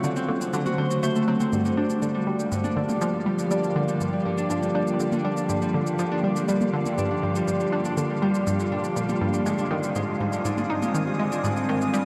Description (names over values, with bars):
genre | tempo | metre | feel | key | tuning
ambient, sequencer-driven space music | 121 BPM | 4/4 | straight | G phrygian | A4 = 440 Hz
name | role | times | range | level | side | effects
evolving wavetable pad | sustained chords | 0.0-12.1 s | D3 to Eb6 | -30 LUFS | equal | chorus, built-in reverb, shimmer reverb
Celtic harp | arpeggios | 0.0-12.1 s | D3 to C5 | -30 LUFS | equal | low-pass filter, tape echo, shimmer reverb
analog pluck | riff | 0.0-12.1 s | G2 to Eb4 | -30 LUFS | equal | chorus, tape echo
electronic shaker and toms | percussion | 0.0-12.0 s | none | -39 LUFS | equal | overdrive, tape echo
wind-like tuned noise texture | texture | 2.5-12.1 s | F4 to F5 | -38 LUFS | equal | built-in reverb, shimmer reverb
room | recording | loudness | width
wet cathedral reverb, RT60 5.8 s | in a vast, echoing space | -25 LUFS | mono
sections
0.0-1.5 A section; 1.5-12.1 B section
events
none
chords
0.0 D7; 1.5 Gm7; 9.5 Ab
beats
0.04 0.53 1.03 | 1.53 2.02 2.52 3.01 | 3.51 4.00 4.50 5.00 | 5.49 5.99 6.49 6.98 | 7.48 7.97 8.47 8.96 | 9.46 9.96 10.45 10.95 | 11.44 11.94